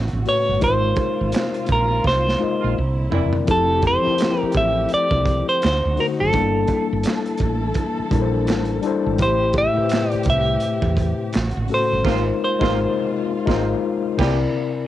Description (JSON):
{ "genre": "R&B, neo-soul", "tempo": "84 BPM", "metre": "4/4", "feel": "swing 58% on 16ths", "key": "unclear", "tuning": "A4 = 441 Hz", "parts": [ { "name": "clean electric guitar", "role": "melody", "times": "0.0-13.1 s", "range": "A4 to E5", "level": "-21 LUFS", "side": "right 1 dB", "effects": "cassette tape" }, { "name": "dark studio string section", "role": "sustained chords", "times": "0.0-14.9 s", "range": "B2 to A4", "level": "-32 LUFS", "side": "equal", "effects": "cassette tape" }, { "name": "woody fretless electric bass", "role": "bass", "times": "0.0-14.4 s", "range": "E1 to E2", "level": "-23 LUFS", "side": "right 2 dB", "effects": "none" }, { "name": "crunchy breakbeat drum kit", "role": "drums", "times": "0.1-14.4 s", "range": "crash cymbal, handclaps, hi-hat, kick drum, snare drum, toms", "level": "-24 LUFS", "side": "right 2 dB", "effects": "cassette tape" }, { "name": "mellow tine electric piano", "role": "accompaniment", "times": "0.2-14.9 s", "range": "A2 to Eb5", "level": "-22 LUFS", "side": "left 6 dB", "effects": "medium stereo tremolo, cassette tape" }, { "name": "warm horn section", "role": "stabs", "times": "2.6-3.3, 12.0-14.4 s", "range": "Bb2 to G4", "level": "-28 LUFS", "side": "right 11 dB", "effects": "cassette tape" } ], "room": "light reverb", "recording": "home recording on cassette", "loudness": "-17 LUFS", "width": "side -13 dB against mid", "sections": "0.0-14.9 A section", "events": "band accent 0.6-3.5, 12.0-14.9; drum fill 2.0-3.5; kick muted 13.5-14.9", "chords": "0.0 A69; 0.6 Ab69; 2.8 C9; 3.5 Fmaj9; 5.6 D7b9; 6.3 Gm69; 9.2 Am7; 11.3 A69; 12.0 Ab69; 14.2 C9", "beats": "| 0.62 1.33 2.05 2.76 | 3.48 4.19 4.90 5.62 | 6.33 7.05 7.76 8.47 | 9.19 9.90 10.62 11.33 | 12.05 12.76 13.47 14.19" }